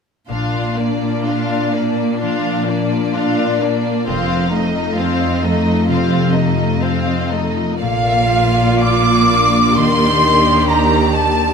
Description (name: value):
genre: classical, slow romantic movement for symphony orchestra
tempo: 58-67 BPM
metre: 4/4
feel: rubato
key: Bb major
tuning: A4 = 440 Hz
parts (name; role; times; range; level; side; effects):
- rich studio violin section; melody; 0.3-11.5 s; D5 to F5; -26 LUFS; left 3 dB; none
- rich studio violin section; second line; 0.3-11.5 s; D4 to D6; -22 LUFS; left 1 dB; none
- rich studio viola section; accompaniment; 0.3-11.5 s; A3 to G4; -20 LUFS; right 2 dB; none
- concert harp; arpeggios; 0.3-11.5 s; F2 to Eb5; -21 LUFS; left 8 dB; none
- rich studio double bass section; bass; 0.3-11.5 s; F1 to Eb2; -22 LUFS; right 2 dB; none
- rich symphonic cello section; bass; 0.3-11.5 s; F2 to Eb3; -20 LUFS; right 2 dB; none
- concert flute; second line; 7.8-11.5 s; F5 to D6; -16 LUFS; equal; none
room: moderate scoring stage reverb, RT60 1.6 s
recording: none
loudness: -13 LUFS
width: side -6 dB against mid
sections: 0.3-7.8 A section; 7.8-11.5 B section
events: none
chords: 0.3 Bb; 4.1 F7; 7.8 Bb; 9.8 Ebmaj7